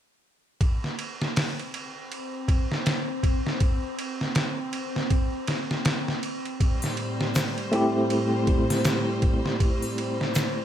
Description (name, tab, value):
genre	trip hop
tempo	80 BPM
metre	4/4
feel	swing 60% on 16ths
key	unclear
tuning	A4 = 440 Hz
part	trip hop sampler-style drum kit	drums	0.6-10.6 s	hi-hat, kick drum, ride cymbal, snare drum	-26 LUFS	equal	none
part	bowed-like drone	texture	1.6-10.6 s	C4	-35 LUFS	left 1 dB	built-in reverb
part	rich studio string section	sustained chords	6.6-10.6 s	A2 to C5	-30 LUFS	equal	vintage 12-bit sampler grit
part	triangle and tube shaker	percussion	6.8-10.5 s	none	-39 LUFS	left 5 dB	none
part	tine electric piano	accompaniment	7.7-10.6 s	A3 to G4	-25 LUFS	equal	tremolo, tape echo
room	light reverb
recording	none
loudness	-23 LUFS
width	side -10 dB against mid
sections	0.6-10.6 A section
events	none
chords	0.6 N.C.; 6.6 Am7